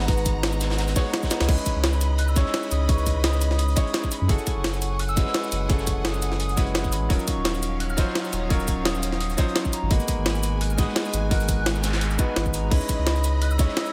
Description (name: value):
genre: liquid drum and bass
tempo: 171 BPM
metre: 4/4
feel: swing 54% on 16ths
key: C# dorian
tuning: A4 = 440 Hz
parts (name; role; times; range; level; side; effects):
- hollow clarinet-like synth lead; melody; 0.0-13.9 s; B4 to F#6; -36 LUFS; equal; phaser, lush chorus, digital delay
- bright concert grand piano; accompaniment; 0.0-13.9 s; F#3 to A#5; -32 LUFS; equal; digital delay
- bright studio string section; sustained chords; 0.0-13.9 s; G#3 to B5; -39 LUFS; equal; none
- warm sub bass; bass; 0.0-13.7 s; D#1 to F#2; -27 LUFS; equal; tube saturation
- crunchy breakbeat drum kit; drums; 0.0-13.9 s; hi-hat, snare drum; -38 LUFS; equal; high-pass filter on hats, high-pass filter on snare, high-pass filter on room
- electronic kick drum; drums; 0.1-13.7 s; none; -26 LUFS; equal; none
- jungle sampler-style drum kit; drums; 0.1-13.9 s; crash cymbal, hi-hat, shaker, snare drum; -30 LUFS; equal; none
- noise sweep; sound effects; 11.8-12.7 s; none; -38 LUFS; equal; none
room: small room ambience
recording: none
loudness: -24 LUFS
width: mono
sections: 0.0-1.5 A section; 1.5-13.9 A section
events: drop 0.0-1.5, 1.5-13.9; drum fill 1.3; band accent 1.4; noise sweep 11.8-12.7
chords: 0.0 G#m9; 1.5 C#m9; 4.3 F#m9; 7.1 D#m9; 9.9 G#m9; 12.7 C#m9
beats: | 0.08 0.43 0.78 1.14 | 1.49 1.84 2.19 2.54 | 2.89 3.24 3.59 3.94 | 4.29 4.64 5.00 5.35 | 5.70 6.05 6.40 6.75 | 7.10 7.45 7.80 8.15 | 8.50 8.86 9.21 9.56 | 9.91 10.26 10.61 10.96 | 11.31 11.66 12.01 12.36 | 12.71 13.06 13.42 13.77